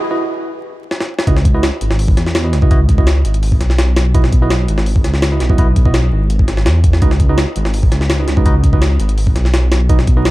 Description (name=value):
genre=drum and bass, jungle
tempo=167 BPM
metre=4/4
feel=straight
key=C# minor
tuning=A4 = 440 Hz
part: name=tine electric piano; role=stabs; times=0.1-10.3 s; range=D#4 to D#5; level=-22 LUFS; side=right 3 dB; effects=medium stereo tremolo, vintage 12-bit sampler grit, dub echo
part: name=jungle sampler-style drum kit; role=drums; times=0.9-10.3 s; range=hi-hat, kick drum, snare drum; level=-14 LUFS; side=equal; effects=none
part: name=dark detuned saw bass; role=bass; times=1.3-10.3 s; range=G#1 to E2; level=-14 LUFS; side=equal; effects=tube saturation
room=little or no reverb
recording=dark, warm production, vinyl crackle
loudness=-11 LUFS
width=side -18 dB against mid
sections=0.0-1.3 A section; 1.3-10.3 B section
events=break 0.0-1.3; build-up 0.0-1.3; filter sweep on tine electric piano 0.0-1.3; drum fill 0.9-1.3; drop 1.3-10.3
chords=0.0 C#m11 (rootless); 1.3 C#m11; 7.0 B